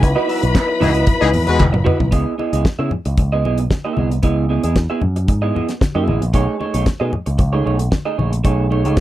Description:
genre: disco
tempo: 114 BPM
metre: 4/4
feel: straight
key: C# minor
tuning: A4 = 438 Hz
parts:
  - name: rich studio string section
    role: second line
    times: 0.0-2.1 s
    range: B4 to B5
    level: -21 LUFS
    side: left 4 dB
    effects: none
  - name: electric guitar through a small old amp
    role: accompaniment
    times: 0.0-9.0 s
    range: A3 to E5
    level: -21 LUFS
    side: right 4 dB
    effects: wide subtle chorus
  - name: mellow French horn section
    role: sustained chords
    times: 0.0-2.1 s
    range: F#3 to E4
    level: -25 LUFS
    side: left 2 dB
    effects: none
  - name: picked electric bass with an envelope filter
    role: bass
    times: 0.0-9.0 s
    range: E1 to C#3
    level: -18 LUFS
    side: equal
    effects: none
  - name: damped 70s drum kit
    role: drums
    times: 0.0-9.0 s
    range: hi-hat, kick drum, snare drum, toms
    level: -17 LUFS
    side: equal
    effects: none
  - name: congas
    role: percussion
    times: 0.6-8.8 s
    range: none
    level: -25 LUFS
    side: left 2 dB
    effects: none
  - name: group handclap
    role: percussion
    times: 0.6-1.7 s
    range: none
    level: -29 LUFS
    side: right 9 dB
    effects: none
  - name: clear horn section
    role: stabs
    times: 0.8-1.6 s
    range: E3 to B4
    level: -18 LUFS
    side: left 6 dB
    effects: none
room: little or no reverb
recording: dry, close 1970s-style studio recording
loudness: -15 LUFS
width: side -14 dB against mid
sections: 0.0-2.1 A section; 2.1-9.0 B section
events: drum fill 1.6-2.1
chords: 0.0 C#m11; 2.1 C#m9; 6.3 B13

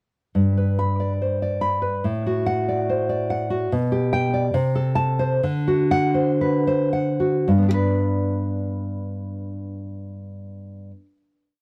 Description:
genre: romantic piece for solo classical guitar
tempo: 53-73 BPM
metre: 2/4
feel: rubato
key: G major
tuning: A4 = 441 Hz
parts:
  - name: nylon-string guitar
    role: solo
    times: 0.3-11.2 s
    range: G2 to B5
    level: -22 LUFS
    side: equal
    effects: none
room: little or no reverb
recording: close, detailed microphones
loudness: -22 LUFS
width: mono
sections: 0.3-7.5 A section; 7.5-11.6 final chord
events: slowing down 2.9-7.5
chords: 0.3 G; 2.0 D7/A; 3.7 G/B; 4.5 Am/C; 5.4 D7; 7.5 G

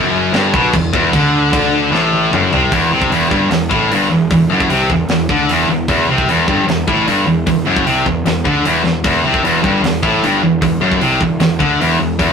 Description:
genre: heavy metal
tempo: 152 BPM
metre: 4/4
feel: straight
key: E minor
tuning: A4 = 437 Hz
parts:
  - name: scooped high-gain guitar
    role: riff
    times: 0.0-12.3 s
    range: E2 to D3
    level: -16 LUFS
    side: right 8 dB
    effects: distortion
  - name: tight distorted guitar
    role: riff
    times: 0.0-12.3 s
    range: E2 to D3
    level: -14 LUFS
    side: left 5 dB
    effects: distortion
  - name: fuzz picked electric bass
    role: bass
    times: 0.0-12.3 s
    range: E1 to D2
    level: -22 LUFS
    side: equal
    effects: overdrive
  - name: tight metal drum kit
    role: drums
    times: 0.3-12.3 s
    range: crash cymbal, hi-hat, kick drum, snare drum, toms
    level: -21 LUFS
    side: equal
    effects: none
room: moderate studio reverb, RT60 0.6 s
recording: rough rehearsal-room recording, tube saturation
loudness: -11 LUFS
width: side -6 dB against mid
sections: 0.0-2.7 A section; 2.7-12.3 B section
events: drum fill 1.9-2.7, 8.8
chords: 0.0 Em

